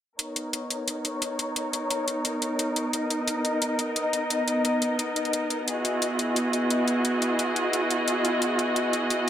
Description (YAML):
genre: liquid drum and bass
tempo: 175 BPM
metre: 4/4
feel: straight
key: B major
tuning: A4 = 439 Hz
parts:
  - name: rich studio string section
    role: sustained chords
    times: 0.2-9.3 s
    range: B3 to D#5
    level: -25 LUFS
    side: equal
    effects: low-pass filter
  - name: electronic hi-hat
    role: drums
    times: 0.2-9.2 s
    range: none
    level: -28 LUFS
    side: left 1 dB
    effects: overdrive, studio reverb
room: light reverb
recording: none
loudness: -24 LUFS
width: side -10 dB against mid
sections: 0.2-9.3 A section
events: filter sweep on string section 0.2-9.3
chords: 0.2 Bmaj9; 5.7 F#13sus4